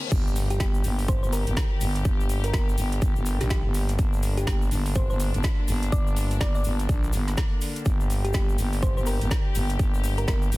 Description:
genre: bass house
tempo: 124 BPM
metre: 4/4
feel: swing 60% on 16ths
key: G minor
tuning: A4 = 440 Hz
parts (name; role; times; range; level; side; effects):
- clear studio string section; sustained chords; 0.0-10.6 s; D3 to G4; -35 LUFS; left 2 dB; sidechain pumping
- reverse cymbal and impact; sound effects; 0.0-2.1 s; none; -37 LUFS; left 2 dB; none
- growling FM bass; bass; 0.1-10.6 s; G1 to Bb1; -26 LUFS; equal; overdrive, sidechain pumping
- electronic kick drum; drums; 0.1-10.4 s; none; -25 LUFS; equal; studio reverb
- garage drum kit; drums; 0.1-10.6 s; crash cymbal, hi-hat, snare drum; -35 LUFS; right 1 dB; overdrive, studio reverb
- egg shaker; percussion; 0.1-10.6 s; none; -41 LUFS; left 4 dB; none
- thumb-piano-like synth pluck; melody; 0.5-10.4 s; G4 to D5; -35 LUFS; equal; chorus, dub echo
room: digital ambience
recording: dense, heavily limited modern master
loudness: -22 LUFS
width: side -20 dB against mid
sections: 0.1-10.6 A section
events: drop 0.1-10.6; impact 0.1-2.1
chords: 0.1 Gm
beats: | 0.12 0.60 1.08 1.57 | 2.05 2.54 3.02 3.50 | 3.99 4.47 4.96 5.44 | 5.92 6.41 6.89 7.38 | 7.86 8.34 8.83 9.31 | 9.79 10.28

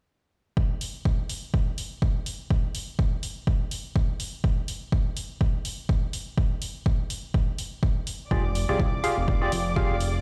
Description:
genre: piano house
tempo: 124 BPM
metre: 4/4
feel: swing 57% on 16ths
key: F dorian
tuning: A4 = 440 Hz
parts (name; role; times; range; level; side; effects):
- electronic kick drum; drums; 0.6-9.9 s; none; -27 LUFS; equal; overdrive
- electronic hi-hat; drums; 0.8-10.1 s; none; -38 LUFS; equal; overdrive
- muted symphonic violin section; sustained chords; 8.3-10.2 s; D5 to D6; -36 LUFS; equal; sidechain pumping
- percussive organ stab; riff; 8.3-10.0 s; F4 to F5; -30 LUFS; equal; subtle chorus, sidechain pumping, dub echo
- fat analog bass; bass; 8.3-10.2 s; F1 to C2; -30 LUFS; equal; sidechain pumping
room: little or no reverb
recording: played on a big sound system in a bare room, stone room reverb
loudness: -27 LUFS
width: mono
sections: 0.6-10.2 A section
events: none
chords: 0.6 N.C.; 8.3 Fm69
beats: | 0.57 1.05 1.54 2.02 | 2.50 2.99 3.47 3.96 | 4.44 4.92 5.41 5.89 | 6.38 6.86 7.34 7.83 | 8.31 8.80 9.28 9.76

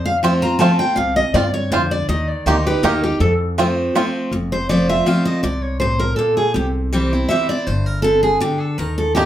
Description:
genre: bluegrass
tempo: 161 BPM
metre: 3/4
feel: swing 54% on 8ths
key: F mixolydian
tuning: A4 = 440 Hz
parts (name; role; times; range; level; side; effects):
- picked steel-string acoustic guitar; melody; 0.0-9.3 s; G4 to Bb5; -19 LUFS; equal; none
- picked steel-string acoustic guitar; accompaniment; 0.0-9.3 s; F2 to G4; -20 LUFS; equal; none
- upright bass; bass; 0.0-9.3 s; F1 to G2; -22 LUFS; left 1 dB; none
- bluegrass banjo; arpeggios; 0.2-4.0, 9.2-9.3 s; Bb3 to G4; -19 LUFS; right 3 dB; none
room: wet studio reverb, RT60 0.5 s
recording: heard from further back in the room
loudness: -15 LUFS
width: side -11 dB against mid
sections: 0.0-4.3 A section; 4.3-9.3 B section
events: steel-string acoustic guitar solo 4.3-9.3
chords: 0.0 F; 2.1 Eb; 3.2 F; 6.6 C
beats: 0.23 0.60 | 0.97 1.35 1.72 | 2.09 2.46 2.83 | 3.21 3.58 3.95 | 4.32 4.70 5.07 | 5.44 5.81 6.19 | 6.56 6.93 7.30 | 7.67 8.05 8.42 | 8.79 9.16

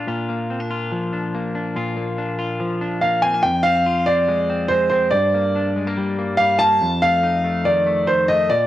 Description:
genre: indie pop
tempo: 142 BPM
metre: 4/4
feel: straight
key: unclear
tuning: A4 = 438 Hz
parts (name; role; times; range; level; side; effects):
- semi-hollow electric guitar; arpeggios; 0.0-8.7 s; F2 to F4; -22 LUFS; left 1 dB; wide subtle chorus, cassette tape
- warm upright piano; melody; 3.0-8.7 s; C5 to A5; -17 LUFS; equal; none
room: moderate spring reverb, RT60 1.1 s, studio ambience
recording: home recording on cassette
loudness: -17 LUFS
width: side -13 dB against mid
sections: 0.1-3.4 A section; 3.4-8.7 B section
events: none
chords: 0.1 Bb; 3.4 Fm; 5.1 Gm; 6.8 F7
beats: | 0.07 0.49 0.92 1.34 | 1.76 2.18 2.60 3.02 | 3.44 3.86 4.28 4.70 | 5.12 5.54 5.97 6.39 | 6.81 7.23 7.65 8.07 | 8.49

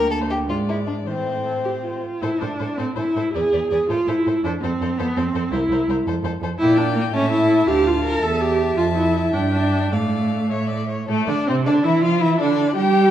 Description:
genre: quick classical-period movement for string quartet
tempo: 100-112 BPM (dotted quarters)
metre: 6/8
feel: rubato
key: A minor, D minor from 6.6 s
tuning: A4 = 437 Hz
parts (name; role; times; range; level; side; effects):
- rich violin; second line; 0.0-13.1 s; C4 to G5; -27 LUFS; left 3 dB; none
- rich viola; accompaniment; 0.0-13.1 s; E3 to Bb4; -20 LUFS; right 1 dB; none
- rich cello; bass; 0.0-13.1 s; C2 to G3; -23 LUFS; right 3 dB; none
- rich violin; melody; 0.2-13.1 s; A3 to A5; -29 LUFS; left 8 dB; none
room: wet recital hall reverb, RT60 1.4 s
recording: dark, warm production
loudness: -18 LUFS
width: side -11 dB against mid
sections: 0.0-2.2 A section; 2.2-11.1 A section; 11.1-13.1 B section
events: none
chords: 0.5 E7/G# (rootless); 1.1 Am; 3.3 E7; 3.9 Am; 4.4 F; 5.5 C7; 6.1 F; 6.6 Gm/Bb; 7.1 A5; 7.7 Dm; 8.2 A5/E; 8.8 Fmaj7; 9.3 G5; 9.9 Dm/A; 11.1 D5/A; 11.7 Dm; 12.2 G5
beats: 0.50 | 1.07 1.65 | 2.22 2.78 | 3.34 3.89 | 4.44 4.98 | 5.53 6.07 | 6.60 7.14 | 7.68 8.23 | 8.77 9.33 | 9.92 10.51 | 11.10 11.66 | 12.21 12.76

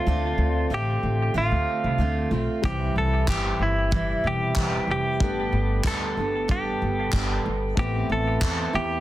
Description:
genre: acoustic pop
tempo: 93 BPM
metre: 4/4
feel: swing 55% on 16ths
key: C major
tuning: A4 = 440 Hz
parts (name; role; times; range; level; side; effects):
- direct-recorded clean electric guitar; melody; 0.0-9.0 s; E4 to A4; -27 LUFS; equal; harmonic tremolo, plate reverb, digital delay
- dark upright piano; accompaniment; 0.0-9.0 s; G3 to D5; -37 LUFS; left 7 dB; none
- picked steel-string acoustic guitar; accompaniment; 0.0-9.0 s; A2 to A4; -29 LUFS; right 3 dB; none
- upright bass; bass; 0.1-9.0 s; E1 to E2; -26 LUFS; equal; none
- loose indie drum kit; drums; 2.6-8.6 s; handclaps, kick drum; -27 LUFS; equal; none
room: light reverb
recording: dense, heavily limited modern master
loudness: -22 LUFS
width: side -14 dB against mid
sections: 0.0-9.0 A section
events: none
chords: 0.0 Dm7; 2.6 C; 5.2 Gadd9; 7.8 Amadd9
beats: | 0.07 0.71 1.35 2.00 | 2.64 3.28 3.92 4.56 | 5.21 5.85 6.49 7.13 | 7.77 8.42

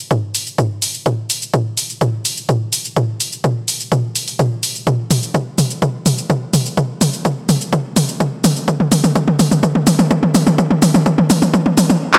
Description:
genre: melodic techno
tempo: 126 BPM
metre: 4/4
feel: straight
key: none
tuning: none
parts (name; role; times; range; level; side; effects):
- electronic kick drum; drums; 0.1-11.6 s; none; -20 LUFS; equal; high-pass filter on kick
- punchy analog drum machine; drums; 0.1-12.2 s; handclaps, hi-hat, shaker, toms; -16 LUFS; equal; sidechain pumping on toms, sidechain pumping on perc, sidechain pumping on hats
room: moderate lush hall reverb, RT60 2.1 s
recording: none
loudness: -16 LUFS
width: mono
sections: 0.0-12.2 A section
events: build-up 0.0-12.2; drum fill 0.0-12.0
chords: none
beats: 0.11 0.58 | 1.06 1.54 2.01 2.49 | 2.96 3.44 3.92 4.39 | 4.87 5.35 5.82 6.30 | 6.78 7.25 7.73 8.20 | 8.68 9.16 9.63 10.11 | 10.58 11.06 11.54 12.01

